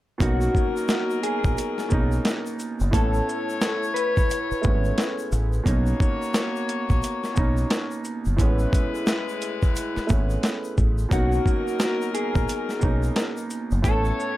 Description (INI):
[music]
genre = hip hop, boom-bap hip-hop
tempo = 88 BPM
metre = 4/4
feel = swing 62% on 16ths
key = B major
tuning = A4 = 440 Hz
[part]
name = mellow electric guitar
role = melody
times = 0.2-5.1, 11.1-14.4 s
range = F#4 to B4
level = -28 LUFS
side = left 1 dB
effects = ensemble chorus, high-pass filter, low-pass filter, ping-pong delay
[part]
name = warm upright piano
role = accompaniment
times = 0.2-14.4 s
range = A2 to D#4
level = -29 LUFS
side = right 3 dB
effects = high-pass filter, low-pass filter
[part]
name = warm horn section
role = stabs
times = 0.2-14.4 s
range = F#3 to C#5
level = -31 LUFS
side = left 5 dB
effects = high-pass filter, low-pass filter, ping-pong delay
[part]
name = deep dub fingered electric bass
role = bass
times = 0.2-14.1 s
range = F#1 to B1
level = -24 LUFS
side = equal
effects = none
[part]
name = dusty soul sampler-style drum kit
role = drums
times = 0.2-14.4 s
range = hi-hat, kick drum, shaker, snare drum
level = -23 LUFS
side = equal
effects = overdrive
[part]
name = tube shaker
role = percussion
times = 0.2-14.2 s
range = none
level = -44 LUFS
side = left 5 dB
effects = none
[sound]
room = little or no reverb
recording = none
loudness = -21 LUFS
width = side -16 dB against mid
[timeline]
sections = 0.2-14.4 A section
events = none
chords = 0.2 Bmaj9; 2.9 Amaj9; 5.7 Bmaj9; 8.4 Amaj9; 11.1 Bmaj9; 13.8 Aadd9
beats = | 0.21 0.89 1.57 2.25 | 2.93 3.62 4.30 4.98 | 5.66 6.34 7.02 7.71 | 8.39 9.07 9.75 10.43 | 11.12 11.80 12.48 13.16 | 13.84